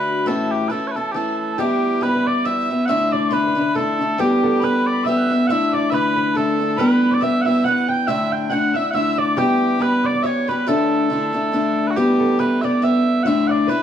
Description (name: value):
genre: celtic folk, Celtic waltz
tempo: 139 BPM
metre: 3/4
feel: swing 55% on 8ths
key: A mixolydian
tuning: A4 = 439 Hz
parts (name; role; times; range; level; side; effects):
- mellow small bagpipes; melody; 0.0-13.8 s; F#4 to G5; -22 LUFS; right 2 dB; none
- reedy mid whistle; second line; 0.0-11.5 s; F#5 to G6; -27 LUFS; left 2 dB; none
- picked acoustic archtop guitar; accompaniment; 0.0-13.8 s; A2 to G4; -19 LUFS; left 2 dB; none
- concert harp; second line; 1.6-13.8 s; G4 to G5; -26 LUFS; right 4 dB; none
room: wet studio reverb, RT60 0.5 s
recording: band playing live in one room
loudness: -16 LUFS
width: side -9 dB against mid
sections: 0.0-1.6 A section; 1.6-12.0 B section; 12.0-13.8 B section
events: none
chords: 0.3 A; 1.6 Em; 2.9 Asus4; 4.2 Em; 5.5 Asus4; 6.8 Em; 8.1 Asus4; 9.4 Em; 10.7 Asus4; 12.0 Em; 13.3 Asus4